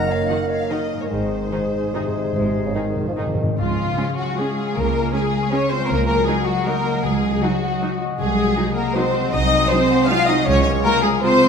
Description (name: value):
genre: classical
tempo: 138-170 BPM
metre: 3/4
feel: rubato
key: Db major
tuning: A4 = 438 Hz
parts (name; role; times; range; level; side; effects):
- rich studio violin section; melody; 0.0-11.5 s; F4 to Bb5; -30 LUFS; left 3 dB; none
- clear clarinet; second line; 0.0-3.4 s; Ab4 to Bb4; -30 LUFS; right 4 dB; none
- mellow large flute ensemble; second line; 0.0-3.4 s; Ab4 to Eb5; -31 LUFS; right 1 dB; none
- mellow bassoon; accompaniment; 0.0-3.6 s; Ab2 to F3; -28 LUFS; right 1 dB; none
- mellow French horn section; sustained chords; 0.0-3.3 s; Ab3 to Eb4; -27 LUFS; left 2 dB; none
- concert harp; arpeggios; 0.0-11.5 s; Gb2 to F6; -25 LUFS; left 7 dB; none
- rich studio cello section; bass; 0.0-11.5 s; Gb2 to F4; -24 LUFS; right 4 dB; none
- rich studio double bass section; bass; 0.0-10.8 s; Gb1 to Db2; -26 LUFS; right 4 dB; none
- warm studio violin section; second line; 0.3-11.5 s; Eb4 to F5; -21 LUFS; left 2 dB; none
- rich studio viola section; accompaniment; 0.3-11.3 s; Eb3 to F4; -29 LUFS; right 2 dB; none
- timpani; percussion; 1.1-3.5 s; Ab2; -26 LUFS; left 1 dB; none
room: wet concert hall reverb, RT60 1.7 s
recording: none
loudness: -17 LUFS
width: side -6 dB against mid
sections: 0.0-3.6 A section; 3.6-11.5 B section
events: timpani fill 1.1-3.6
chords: 0.0 Ebm/Gb; 1.1 Ab; 3.6 Db; 5.9 Ebm7/Db; 8.2 Ab7/C; 10.5 Db